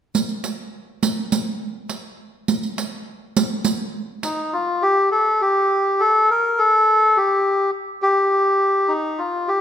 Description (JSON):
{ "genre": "Turkish makam ensemble", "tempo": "103 BPM", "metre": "4/4", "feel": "straight", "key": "G makam ussak", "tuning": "A4 = 441 Hz", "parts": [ { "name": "riq", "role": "percussion", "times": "0.1-4.4 s", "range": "none", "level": "-22 LUFS", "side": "right 5 dB", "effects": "none" }, { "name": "melodica", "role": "melody", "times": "4.2-9.6 s", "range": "Eb4 to Bb4", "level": "-16 LUFS", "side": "left 1 dB", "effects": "none" } ], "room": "moderate scoring stage reverb, RT60 1.5 s", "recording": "minimal, uncompressed stereo recording", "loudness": "-17 LUFS", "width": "side -9 dB against mid", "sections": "0.1-4.8 A section; 4.8-9.6 B section", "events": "none", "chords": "none" }